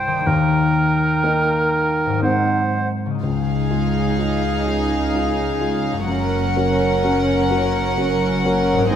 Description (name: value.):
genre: cinematic.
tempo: 63 BPM.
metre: 3/4.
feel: rubato.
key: unclear.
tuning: A4 = 439 Hz.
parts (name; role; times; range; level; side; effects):
silver concert flute; second line; 0.0-2.9 s; Gb5 to G5; -23 LUFS; right 4 dB; none.
warm oboe; second line; 0.0-2.9 s; Bb4 to C5; -22 LUFS; right 2 dB; none.
warm grand piano; accompaniment; 0.0-9.0 s; C2 to Gb4; -22 LUFS; left 1 dB; none.
concert harp; arpeggios; 0.0-9.0 s; Gb2 to Gb4; -27 LUFS; left 6 dB; none.
clear clarinet; second line; 0.3-2.9 s; Eb4; -28 LUFS; right 2 dB; none.
warm symphonic violin section; melody; 3.2-9.0 s; Eb5 to Gb5; -26 LUFS; left 4 dB; none.
warm symphonic violin section; second line; 3.2-9.0 s; Ab4 to Bb4; -25 LUFS; left 1 dB; none.
warm chamber viola section; accompaniment; 3.2-9.0 s; C4 to Eb4; -25 LUFS; equal; none.
dark symphonic double bass section; bass; 3.2-9.0 s; Gb1 to Db2; -26 LUFS; right 4 dB; none.
warm symphonic cello section; bass; 3.2-9.0 s; Db2 to Ab2; -26 LUFS; right 2 dB; none.
room: wet scoring stage reverb, RT60 1.6 s.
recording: none.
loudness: -17 LUFS.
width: side -9 dB against mid.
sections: 0.0-3.2 A section; 3.2-9.0 B section.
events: none.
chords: 0.3 Eb; 2.2 Ab7; 3.2 Dbadd9; 6.1 Gb.